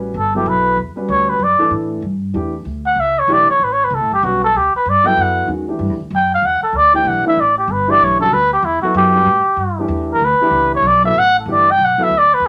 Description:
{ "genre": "modal jazz", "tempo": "191 BPM", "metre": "3/4", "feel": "swing 63% on 8ths", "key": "A mixolydian", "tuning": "A4 = 438 Hz", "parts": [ { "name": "dark concert grand piano", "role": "accompaniment", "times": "0.0-12.1 s", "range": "D3 to B4", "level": "-24 LUFS", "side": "equal", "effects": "none" }, { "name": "upright bass", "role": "bass", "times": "0.0-12.5 s", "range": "G1 to A2", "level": "-26 LUFS", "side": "equal", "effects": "none" }, { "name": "trumpet with cup mute", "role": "melody", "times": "0.2-12.5 s", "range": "E4 to G5", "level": "-15 LUFS", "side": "equal", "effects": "none" } ], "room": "light reverb", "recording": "none", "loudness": "-15 LUFS", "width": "mono", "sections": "0.0-12.5 A section", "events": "muted trumpet solo 0.0-12.5", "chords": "0.0 A13sus4" }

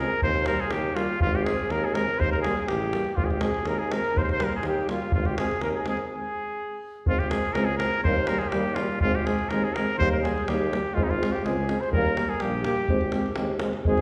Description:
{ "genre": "balkan folk, Balkan brass band", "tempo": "123 BPM", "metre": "2/4", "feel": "straight", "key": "Ab major", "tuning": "A4 = 440 Hz", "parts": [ { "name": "cornet with straight mute", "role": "melody", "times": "0.0-14.0 s", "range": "Eb4 to C5", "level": "-31 LUFS", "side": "equal", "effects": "none" }, { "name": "clear flugelhorn", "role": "second line", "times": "0.0-6.0, 10.0-14.0 s", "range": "Eb4 to C5", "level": "-34 LUFS", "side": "equal", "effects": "none" }, { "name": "warm euphonium", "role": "accompaniment", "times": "0.0-14.0 s", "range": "Bb3 to C4", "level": "-36 LUFS", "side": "equal", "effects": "none" }, { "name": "warm trombone", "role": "accompaniment", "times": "0.0-14.0 s", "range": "G3 to Ab3", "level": "-34 LUFS", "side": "equal", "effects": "none" }, { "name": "warm tuba", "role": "bass", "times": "0.0-14.0 s", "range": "Ab1 to Eb2", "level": "-33 LUFS", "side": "equal", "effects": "none" }, { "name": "davul", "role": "percussion", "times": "0.1-14.0 s", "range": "none", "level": "-32 LUFS", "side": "equal", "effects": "none" } ], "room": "wet recital hall reverb, RT60 1.8 s", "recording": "recorded in a church or concert hall", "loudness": "-26 LUFS", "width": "mono", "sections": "0.0-7.1 A section; 7.1-14.0 A section", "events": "stop 6.1-7.1", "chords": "0.3 Eb; 1.2 Ab; 2.2 Eb; 3.2 Ab; 4.1 Eb; 5.1 Ab; 6.1 N.C.; 7.1 Ab; 8.0 Eb; 9.0 Ab; 10.0 Eb; 10.9 Ab; 11.9 Eb; 12.9 Ab" }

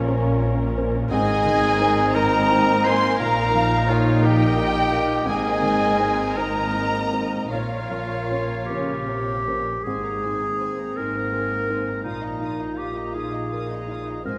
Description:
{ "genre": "cinematic", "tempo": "50-59 BPM (dotted quarters)", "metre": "6/8", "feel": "rubato", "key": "Ab major", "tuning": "A4 = 439 Hz", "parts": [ { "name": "felt-muted upright piano", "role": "accompaniment", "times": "0.0-14.4 s", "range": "Ab2 to F5", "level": "-31 LUFS", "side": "equal", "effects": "none" }, { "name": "muted symphonic viola section", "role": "accompaniment", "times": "0.0-14.4 s", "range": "C4 to Db5", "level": "-35 LUFS", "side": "equal", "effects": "none" }, { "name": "mellow French horn section", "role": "sustained chords", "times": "0.0-14.4 s", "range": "Bb3 to Db5", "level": "-31 LUFS", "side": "equal", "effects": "none" }, { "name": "muted symphonic cello section", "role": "bass", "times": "0.0-14.4 s", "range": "Ab2 to Db3", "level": "-34 LUFS", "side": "equal", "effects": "none" }, { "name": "muted symphonic double bass section", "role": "bass", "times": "0.0-14.4 s", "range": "Ab1 to Bb1", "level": "-30 LUFS", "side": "equal", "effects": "none" }, { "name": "muted symphonic violin section", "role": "melody", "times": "1.1-14.4 s", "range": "F5 to Eb6", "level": "-32 LUFS", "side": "equal", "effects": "none" }, { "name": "clear oboe", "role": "second line", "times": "1.1-9.4 s", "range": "F4 to C5", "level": "-29 LUFS", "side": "equal", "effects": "none" }, { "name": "mellow hollow silver concert flute", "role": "second line", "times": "1.1-9.4 s", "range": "F5 to C6", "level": "-27 LUFS", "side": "equal", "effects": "none" }, { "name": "muted studio violin section", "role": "second line", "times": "1.1-14.4 s", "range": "Bb4 to Ab5", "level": "-33 LUFS", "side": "equal", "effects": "none" }, { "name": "clear clarinet", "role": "second line", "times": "8.3-14.4 s", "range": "Eb4 to Bb4", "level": "-30 LUFS", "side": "equal", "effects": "none" } ], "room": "wet scoring stage reverb, RT60 2.0 s", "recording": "none", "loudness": "-22 LUFS", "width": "mono", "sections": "0.0-9.8 A section; 9.8-14.4 A section", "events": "none", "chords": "0.0 Bbmadd9; 1.1 Abadd9; 3.2 Ebsus2/Bb; 5.3 Abadd9; 7.5 Bbmadd9; 9.8 Abadd9; 12.0 Ebsus2/Bb" }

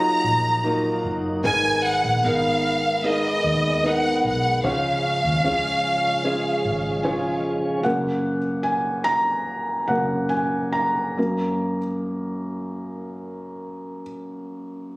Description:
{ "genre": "pop", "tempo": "74 BPM", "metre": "4/4", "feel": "uneven beats", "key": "unclear", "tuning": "A4 = 440 Hz", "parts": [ { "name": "rich studio violin section", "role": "melody", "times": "0.0-7.4 s", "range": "Eb5 to Bb5", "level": "-22 LUFS", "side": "equal", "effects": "slapback echo" }, { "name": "felt-muted upright piano", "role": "accompaniment", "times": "0.0-15.0 s", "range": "Gb2 to Bb5", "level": "-24 LUFS", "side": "equal", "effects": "none" }, { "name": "tonewheel organ", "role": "sustained chords", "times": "0.0-7.8 s", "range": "F3 to Eb4", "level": "-30 LUFS", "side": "equal", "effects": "overdrive, lush chorus" }, { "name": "fingerpicked plugged-in steel-string acoustic guitar", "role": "arpeggios", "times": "0.0-8.4 s", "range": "Ab2 to Bb4", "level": "-29 LUFS", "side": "equal", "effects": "slapback echo" }, { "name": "vintage muted fingered electric bass", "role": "bass", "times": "0.0-7.8 s", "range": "F1 to Eb2", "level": "-29 LUFS", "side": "equal", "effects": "none" } ], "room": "light reverb, small room ambience", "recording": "recorded on a phone in the room, studio reverb, compression", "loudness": "-20 LUFS", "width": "side -21 dB against mid", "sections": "0.0-7.8 A section; 7.8-15.0 B section", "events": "slowing down 7.8-15.0; felt piano solo 7.8-15.0", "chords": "0.0 Ebmadd9/Gb; 1.4 Abmadd9; 4.6 Db; 7.8 Gb" }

